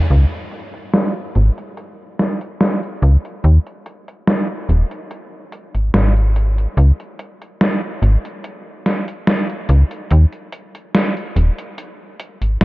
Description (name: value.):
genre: vaporwave.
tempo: 72 BPM.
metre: 4/4.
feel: swing 53% on 16ths.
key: unclear.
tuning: A4 = 437 Hz.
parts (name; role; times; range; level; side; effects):
slap-like FM bass; bass; 0.1-12.6 s; Eb1 to Eb2; -11 LUFS; equal; tube saturation.
gated 80s digital drum machine; drums; 0.1-12.6 s; hi-hat, snare drum; -19 LUFS; equal; gated reverb, gated reverb snare, low-pass filter on hats, low-pass filter on snare, low-pass filter on toms, low-pass filter on room.
room: light reverb.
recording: dark, warm production, cassette tape.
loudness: -15 LUFS.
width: side -20 dB against mid.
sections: 0.1-12.6 A section.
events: none.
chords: none.